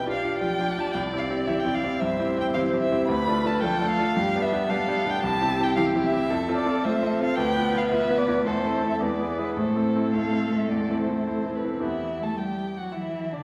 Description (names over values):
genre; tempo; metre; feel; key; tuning
quick classical-period movement for piano quartet; 111 BPM; 4/4; straight; A minor; A4 = 439 Hz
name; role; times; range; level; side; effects
warm violin; melody; 0.0-13.4 s; A4 to B5; -32 LUFS; equal; none
warm violin; second line; 0.0-13.4 s; D4 to F5; -32 LUFS; equal; none
bright baby grand piano; accompaniment; 0.0-13.4 s; C2 to B4; -28 LUFS; equal; none
warm cello; second line; 0.4-13.4 s; D3 to B3; -32 LUFS; equal; none
room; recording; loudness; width
wet recital hall reverb, RT60 1.5 s; heard from further back in the room; -25 LUFS; mono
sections
0.0-11.8 A section; 11.8-13.4 B section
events
none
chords
0.0 G7(no3); 0.9 C; 3.1 Dm; 4.2 G; 5.2 C; 6.3 F; 7.4 Bdim/D; 8.5 Am/E; 9.0 E7; 9.6 Am; 11.8 Em